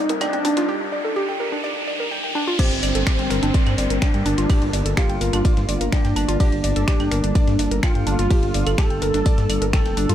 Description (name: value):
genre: melodic techno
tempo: 126 BPM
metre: 4/4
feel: straight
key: G minor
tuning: A4 = 442 Hz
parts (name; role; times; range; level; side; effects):
- expressive portamento lead; melody; 0.0-10.1 s; C4 to A4; -25 LUFS; equal; ensemble chorus, cassette tape, ping-pong delay
- dark detuned synth bell; second line; 0.0-10.1 s; C5 to A5; -34 LUFS; left 1 dB; chorus, sidechain pumping, tape echo
- dark analog pad; sustained chords; 0.0-10.1 s; G3 to G5; -30 LUFS; right 1 dB; chorus, sidechain pumping
- riser and downlifter; sound effects; 0.0-6.4 s; none; -29 LUFS; equal; none
- woody wave-folded pluck; arpeggios; 0.1-10.1 s; D4 to G5; -27 LUFS; equal; chorus, sidechain pumping, tape echo
- house drum kit; drums; 0.1-10.1 s; claves, crash cymbal, finger snaps, hi-hat, ride cymbal, toms; -29 LUFS; equal; high-pass filter on hats, small room ambience, high-pass filter on toms, high-pass filter on perc, high-pass filter on cymbals, high-pass filter on snare
- electronic snare drum and tambourine; drums; 0.2-10.1 s; none; -38 LUFS; equal; none
- electronic kick drum; drums; 2.6-9.8 s; none; -19 LUFS; equal; small room ambience
- dark detuned saw bass; bass; 2.7-10.1 s; F1 to G2; -22 LUFS; equal; sidechain pumping
room: light reverb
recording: none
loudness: -18 LUFS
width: side -11 dB against mid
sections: 0.0-2.6 A section; 2.6-10.1 B section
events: build-up 0.0-2.6; drum fill 0.0-0.7; riser 0.0-2.6; filter sweep on analog synth pad 0.0-2.6; break 0.7-2.6; drop 2.6-10.1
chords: 0.0 Csus2/G; 2.6 Gm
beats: 0.21 | 0.69 1.16 1.64 2.12 | 2.59 3.07 3.54 4.02 | 4.50 4.97 5.45 5.92 | 6.40 6.88 7.35 7.83 | 8.30 8.78 9.26 9.73